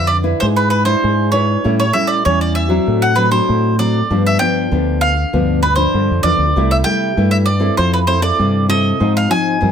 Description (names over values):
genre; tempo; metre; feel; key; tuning
samba and choro; 98 BPM; 4/4; straight; unclear; A4 = 444 Hz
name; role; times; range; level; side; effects
bowl-back mandolin; melody; 0.0-9.7 s; B4 to Ab5; -17 LUFS; right 2 dB; none
nylon-string guitar; accompaniment; 0.0-9.7 s; G2 to B4; -18 LUFS; left 1 dB; none
deep dub fingered electric bass; bass; 0.0-9.7 s; C2 to A2; -16 LUFS; equal; none
room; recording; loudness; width
light reverb; none; -12 LUFS; side -8 dB against mid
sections
0.0-9.7 A section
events
none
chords
0.4 E7/G#; 1.6 A7; 2.9 D7/A; 4.1 G7; 6.6 C6; 7.8 Fmaj7; 9.0 Ab6